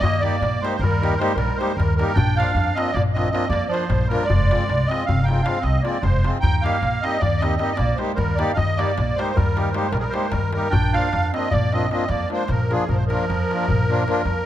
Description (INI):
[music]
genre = balkan folk, Balkan wedding band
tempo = 308 BPM (eighths)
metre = 11/8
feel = straight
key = Bb mixolydian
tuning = A4 = 441 Hz
[part]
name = musette accordion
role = melody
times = 0.0-14.5 s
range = Ab4 to G5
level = -24 LUFS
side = equal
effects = none
[part]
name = bright clarinet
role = second line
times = 0.0-14.5 s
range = F3 to Eb4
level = -28 LUFS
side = right 6 dB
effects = none
[part]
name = upright bass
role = bass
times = 0.0-14.4 s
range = F1 to F2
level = -23 LUFS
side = equal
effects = none
[part]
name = darbuka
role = percussion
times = 0.0-14.4 s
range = none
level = -25 LUFS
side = left 2 dB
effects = none
[part]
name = accordion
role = accompaniment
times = 0.2-14.2 s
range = F3 to G4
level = -27 LUFS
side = left 2 dB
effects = none
[sound]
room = moderate concert hall reverb, RT60 1.9 s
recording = none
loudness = -18 LUFS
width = side -12 dB against mid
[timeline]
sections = 0.0-14.5 A section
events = none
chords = 0.0 Eb; 2.2 Bb; 4.3 Fm; 6.4 Eb; 10.7 Bb